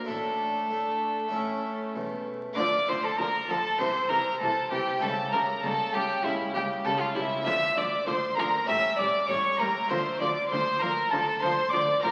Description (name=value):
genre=classical, baroque-style concerto movement with solo episodes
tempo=98 BPM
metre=4/4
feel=straight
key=D minor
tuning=A4 = 439 Hz
part: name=rich violin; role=melody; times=0.0-12.1 s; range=E4 to E5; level=-31 LUFS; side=equal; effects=none
part: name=warm chamber violin section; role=melody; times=0.0-12.1 s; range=A4 to E6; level=-32 LUFS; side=equal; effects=none
part: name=rich chamber violin section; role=second line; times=0.0-12.1 s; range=C#4 to E5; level=-37 LUFS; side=equal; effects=none
part: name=harpsichord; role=accompaniment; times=0.0-12.1 s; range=E2 to G4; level=-39 LUFS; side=equal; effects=none
part: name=warm chamber viola section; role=accompaniment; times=0.0-12.1 s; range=E3 to A3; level=-39 LUFS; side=equal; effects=none
part: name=rich chamber double bass section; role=bass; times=0.0-12.1 s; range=E1 to A2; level=-44 LUFS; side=equal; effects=none
part: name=warm chamber cello section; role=bass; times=0.0-12.1 s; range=E2 to A3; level=-44 LUFS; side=equal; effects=none
room=wet scoring stage reverb, RT60 1.6 s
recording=very old 78 rpm record, vinyl crackle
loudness=-27 LUFS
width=mono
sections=0.0-2.6 A section; 2.6-12.1 B section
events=none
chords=0.1 Asus4; 1.3 A; 2.6 Dm; 3.8 C; 5.0 A7/C#; 7.5 Dm; 8.7 A7; 9.9 Dm